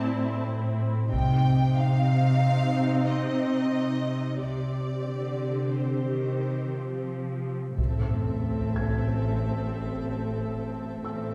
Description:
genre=cinematic, suspense film score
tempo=92 BPM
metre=5/4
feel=straight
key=unclear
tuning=A4 = 440 Hz
part: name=clear studio violin section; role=melody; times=0.0-11.3 s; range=C5 to A5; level=-38 LUFS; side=equal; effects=none
part: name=rich studio viola section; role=accompaniment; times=0.0-11.3 s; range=C4 to A4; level=-33 LUFS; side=equal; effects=none
part: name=marimba with soft mallets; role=riff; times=0.0-11.3 s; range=A2 to C4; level=-30 LUFS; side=equal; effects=none
part: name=rich studio cello section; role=bass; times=0.0-11.3 s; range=A2 to F3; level=-35 LUFS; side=equal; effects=none
part: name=felt-muted upright piano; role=texture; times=0.0-1.2, 8.8-11.3 s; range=D5 to G#6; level=-46 LUFS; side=equal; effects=none
part: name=rich studio double bass section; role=bass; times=1.1-11.3 s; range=A1 to C2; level=-37 LUFS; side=equal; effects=none
part: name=taiko ensemble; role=drums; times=1.1-2.4, 7.8-9.1 s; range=none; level=-36 LUFS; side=equal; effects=none
part: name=sub drop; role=sound effects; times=7.8-11.0 s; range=none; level=-38 LUFS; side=equal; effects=none
room=wet scoring stage reverb, RT60 2.0 s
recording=heard from further back in the room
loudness=-27 LUFS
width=mono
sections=0.0-7.8 A section; 7.8-11.3 B section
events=impact 7.8-11.0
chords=0.0 Am; 1.1 Cm; 7.8 Am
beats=0.48 | 1.13 1.78 2.43 3.09 3.75 | 4.42 5.10 5.77 6.45 7.11 | 7.78 8.43 9.09 9.74 10.40 | 11.05

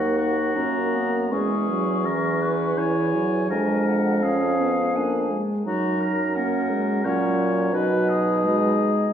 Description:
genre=classical, slow romantic movement for wind quintet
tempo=84 BPM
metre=3/4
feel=uneven beats, rubato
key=B major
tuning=A4 = 440 Hz
part: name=hollow concert flute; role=melody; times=0.0-9.1 s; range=D#5 to C#6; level=-29 LUFS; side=left 5 dB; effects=none
part: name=warm oboe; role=second line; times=0.0-9.1 s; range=F#4 to C#5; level=-28 LUFS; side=left 3 dB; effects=none
part: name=mellow French horn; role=accompaniment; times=0.0-9.1 s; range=E3 to C#4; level=-26 LUFS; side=left 1 dB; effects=none
part: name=warm clarinet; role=accompaniment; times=0.0-9.1 s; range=B3 to E4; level=-28 LUFS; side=right 5 dB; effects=none
part: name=warm bassoon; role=bass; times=0.0-9.1 s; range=D#2 to B2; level=-25 LUFS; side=right 2 dB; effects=none
room=wet recital hall reverb, RT60 1.6 s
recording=heard from further back in the room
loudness=-20 LUFS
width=side -9 dB against mid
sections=0.0-9.1 A section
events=none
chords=0.0 D#m; 1.3 C#m/E; 3.5 Fdim7; 5.7 F#; 7.7 B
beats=0.56 | 1.31 2.05 2.77 | 3.50 4.23 4.95 | 5.67 6.36 7.04 | 7.73 8.44

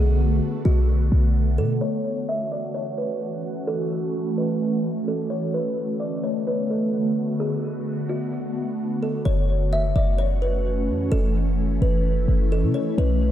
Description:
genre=hip hop, atmospheric cloud-rap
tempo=129 BPM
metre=4/4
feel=half-time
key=F# minor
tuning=A4 = 440 Hz
part: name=kalimba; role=melody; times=0.0-13.3 s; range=F#4 to E5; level=-28 LUFS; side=equal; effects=tape echo
part: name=ethereal airy pad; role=sustained chords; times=0.0-13.3 s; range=D3 to F#4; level=-25 LUFS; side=equal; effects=ensemble chorus, built-in reverb, phaser
part: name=clean 808-style bass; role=bass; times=0.0-1.8, 9.3-13.3 s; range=F#1 to C#3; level=-20 LUFS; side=equal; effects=none
room=moderate lush hall reverb, RT60 2.1 s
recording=dreamy mix soaked in reverb, low-pass filter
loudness=-21 LUFS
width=side -11 dB against mid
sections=0.0-1.8 A section; 1.8-9.3 B section; 9.3-13.3 C section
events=filter sweep 1.8-9.3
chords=0.0 Bm7; 1.8 F#m7; 5.5 Bm7; 9.3 F#m7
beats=0.42 0.89 1.35 | 1.82 2.28 2.75 3.21 | 3.68 4.14 4.61 5.07 | 5.54 6.00 6.47 6.93 | 7.40 7.86 8.33 8.79 | 9.26 9.72 10.19 10.65 | 11.12 11.59 12.05 12.52 | 12.98

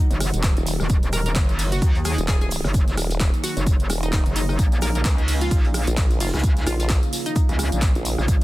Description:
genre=bass house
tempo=130 BPM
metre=4/4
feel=swing 57% on 16ths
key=Eb minor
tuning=A4 = 440 Hz
part: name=hollow square pluck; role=melody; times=0.0-7.9 s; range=Eb4 to Bb4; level=-32 LUFS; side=left 1 dB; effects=chorus, tape echo
part: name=sweeping resonant pad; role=sustained chords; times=0.0-8.4 s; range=Db3 to Gb4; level=-32 LUFS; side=right 1 dB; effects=chorus, sidechain pumping
part: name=downlifter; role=sound effects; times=0.0-0.9 s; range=none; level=barely audible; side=none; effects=none
part: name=granular cloud pad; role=texture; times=0.0-8.4 s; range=Eb4 to Ab5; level=-34 LUFS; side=right 2 dB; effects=built-in reverb, sidechain pumping
part: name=metallic wobble bass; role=bass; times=0.1-8.4 s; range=Eb1 to Eb2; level=-23 LUFS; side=equal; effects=chorus, overdrive, sidechain pumping
part: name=big-room dance drum kit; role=drums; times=0.1-8.4 s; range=handclaps, hi-hat, rim click, tambourine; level=-29 LUFS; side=equal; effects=none
part: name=vintage drum kit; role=drums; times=0.2-8.4 s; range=hi-hat, shaker, snare drum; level=-38 LUFS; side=equal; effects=none
part: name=electronic kick drum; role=drums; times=0.4-8.4 s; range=none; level=-19 LUFS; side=equal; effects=overdrive
part: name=formant-sweep wobble bass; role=bass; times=0.6-8.2 s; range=Eb1 to Bb1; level=-24 LUFS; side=equal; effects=chorus, tube saturation, sidechain pumping
room=little or no reverb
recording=dense, heavily limited modern master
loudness=-18 LUFS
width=side -17 dB against mid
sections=0.0-8.4 A section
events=none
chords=0.0 Ebm; 4.6 Bbm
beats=0.44 | 0.90 1.36 1.82 2.28 | 2.74 3.21 3.67 4.13 | 4.59 5.05 5.51 5.97 | 6.44 6.90 7.36 7.82 | 8.28

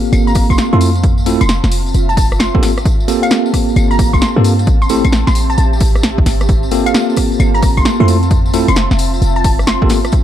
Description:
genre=UK garage, two-step garage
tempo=132 BPM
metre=4/4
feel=swing 65% on 16ths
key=unclear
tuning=A4 = 445 Hz
part: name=bell-like tine electric piano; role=stabs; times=0.0-10.0 s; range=A3 to A4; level=-17 LUFS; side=equal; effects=medium stereo tremolo
part: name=tambourine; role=percussion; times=0.0-10.2 s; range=none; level=-29 LUFS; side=left 2 dB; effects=none
part: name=ethereal airy pad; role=texture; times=0.0-10.2 s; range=Bb3 to A5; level=-21 LUFS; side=right 2 dB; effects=ensemble chorus, built-in reverb, sidechain pumping
part: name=short 808-style bass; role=bass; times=0.1-9.9 s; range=F1 to G2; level=-14 LUFS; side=equal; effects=sidechain pumping
part: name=house drum kit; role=drums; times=0.1-10.2 s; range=claves, hi-hat, rim click, snare drum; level=-19 LUFS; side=equal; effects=none
part: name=glassy wavetable pluck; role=melody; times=0.3-10.0 s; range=F5 to C6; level=-22 LUFS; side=equal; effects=chorus, ping-pong delay
part: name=electronic kick drum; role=drums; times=0.4-10.2 s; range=none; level=-14 LUFS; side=equal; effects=none
room=light reverb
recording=dark, warm production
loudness=-10 LUFS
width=side -11 dB against mid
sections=0.0-10.2 A section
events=none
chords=0.0 Gm11; 0.8 Fmaj7; 2.6 Gm11; 4.7 Am7; 6.5 Gm11; 8.1 Fmaj7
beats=0.13 0.58 | 1.04 1.49 1.95 2.40 | 2.85 3.31 3.76 4.22 | 4.67 5.13 5.58 6.04 | 6.49 6.95 7.40 7.85 | 8.31 8.76 9.22 9.67 | 10.13

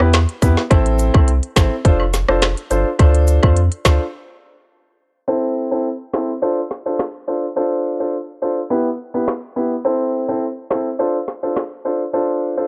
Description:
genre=dancehall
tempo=105 BPM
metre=4/4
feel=straight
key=A minor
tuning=A4 = 440 Hz
part: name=warm grand piano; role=accompaniment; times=0.0-12.7 s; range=B3 to C5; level=-21 LUFS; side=equal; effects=none
part: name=saturated sub bass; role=bass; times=0.0-4.0 s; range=F1 to F2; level=-19 LUFS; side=equal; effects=none
part: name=island pop drum kit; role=drums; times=0.0-11.7 s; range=finger snaps, hi-hat, kick drum, rim click, snare drum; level=-18 LUFS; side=equal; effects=vintage 12-bit sampler grit
part: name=woodblock and cabasa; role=percussion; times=0.1-4.0 s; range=none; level=-30 LUFS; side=equal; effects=none
room=small room ambience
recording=dry, gritty hardware recording, cassette tape, low-pass filter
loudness=-18 LUFS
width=mono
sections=0.0-5.3 A section; 5.3-12.7 B section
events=break 4.1-5.3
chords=0.0 Em; 0.7 Am; 1.9 F6; 3.0 Dm7; 4.1 N.C.; 5.3 Am; 6.4 Dm7; 8.7 Em; 9.9 Am; 11.0 Dm7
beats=0.14 | 0.71 1.28 1.85 2.42 | 2.99 3.56 4.14 4.71 | 5.28 5.85 6.42 6.99 | 7.57 8.14 8.71 9.28 | 9.85 10.42 10.99 11.56 | 12.14

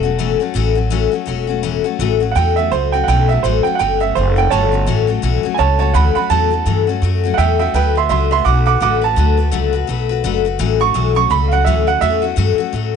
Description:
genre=rock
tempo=168 BPM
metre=4/4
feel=swing 59% on 8ths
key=A mixolydian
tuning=A4 = 438 Hz
part: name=bright upright piano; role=melody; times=0.0-12.2 s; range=B4 to D6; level=-17 LUFS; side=right 14 dB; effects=none
part: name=picked steel-string acoustic guitar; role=accompaniment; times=0.0-12.9 s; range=A2 to B4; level=-18 LUFS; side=left 15 dB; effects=none
part: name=upright bass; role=bass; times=0.0-13.0 s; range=E1 to A2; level=-17 LUFS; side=equal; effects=none
room=studio ambience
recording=1960s-style stereo with parts hard left and right, nothing above 10.7 kHz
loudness=-13 LUFS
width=side -7 dB against mid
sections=0.0-2.0 A section; 2.0-13.0 B section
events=upright piano solo 2.0-13.0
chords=0.0 A6; 7.7 D6; 10.6 A6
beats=0.19 | 0.55 0.91 1.27 1.63 | 1.99 2.35 2.71 3.08 | 3.43 3.79 4.15 4.51 | 4.87 5.23 5.59 5.95 | 6.30 6.66 7.02 7.38 | 7.74 8.09 8.45 8.81 | 9.17 9.52 9.88 10.24 | 10.60 10.95 11.31 11.67 | 12.03 12.38 12.74

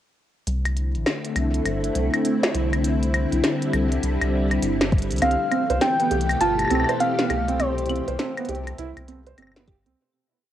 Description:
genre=IDM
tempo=101 BPM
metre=4/4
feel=swing 62% on 16ths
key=C major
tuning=A4 = 440 Hz
part: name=soft string machine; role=sustained chords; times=0.8-9.9 s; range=B2 to G4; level=-25 LUFS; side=left 1 dB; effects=phaser, ensemble chorus, cassette tape
part: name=rubbery square bass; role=bass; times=0.5-9.9 s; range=G1 to C2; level=-26 LUFS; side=equal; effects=tube saturation
part: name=glitchy drum kit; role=drums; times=0.5-10.0 s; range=claves, hi-hat, snare drum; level=-26 LUFS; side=left 1 dB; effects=none
part: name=electronic kick drum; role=drums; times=4.9-5.1, 9.7-9.8 s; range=none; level=-20 LUFS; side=equal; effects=none
part: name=soft struck synth lead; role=melody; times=5.2-8.8 s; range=C5 to A5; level=-24 LUFS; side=left 2 dB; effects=chorus, vintage 12-bit sampler grit, cassette tape
part: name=felt-muted upright piano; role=arpeggios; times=5.2-10.0 s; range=B3 to C5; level=-27 LUFS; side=right 7 dB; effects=cassette tape, tape echo
room=moderate spring reverb, RT60 1.8 s, digital ambience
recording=home recording on cassette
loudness=-20 LUFS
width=side -11 dB against mid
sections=0.5-10.0 groove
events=fade-out 6.8-10.0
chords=0.5 C69; 2.8 D9sus4/C; 5.2 Fmaj9#11/C; 7.6 Am9/C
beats=| 0.47 1.06 1.66 2.25 | 2.84 3.44 4.03 4.63 | 5.22 5.81 6.41 7.00 | 7.60 8.19 8.79 9.38

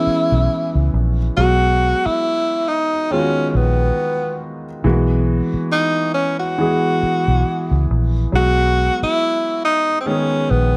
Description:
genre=R&B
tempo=69 BPM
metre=4/4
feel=swing 58% on 16ths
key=B major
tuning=A4 = 441 Hz
part: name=breathy tenor saxophone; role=melody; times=0.0-10.8 s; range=B3 to F#4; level=-20 LUFS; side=equal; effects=none
part: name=warm concert grand piano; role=accompaniment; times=0.0-10.8 s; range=D#3 to G#4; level=-24 LUFS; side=equal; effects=none
part: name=vintage muted fingered electric bass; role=bass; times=0.1-10.8 s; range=A#1 to C#2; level=-19 LUFS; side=equal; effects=none
room=light reverb, studio ambience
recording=none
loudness=-18 LUFS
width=mono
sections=0.0-10.8 A section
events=none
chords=0.0 F#9sus4/B; 1.4 B6; 4.8 F#9sus4/B; 8.3 B6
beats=0.50 | 1.36 2.23 3.10 3.97 | 4.84 5.71 6.58 7.45 | 8.32 9.19 10.06

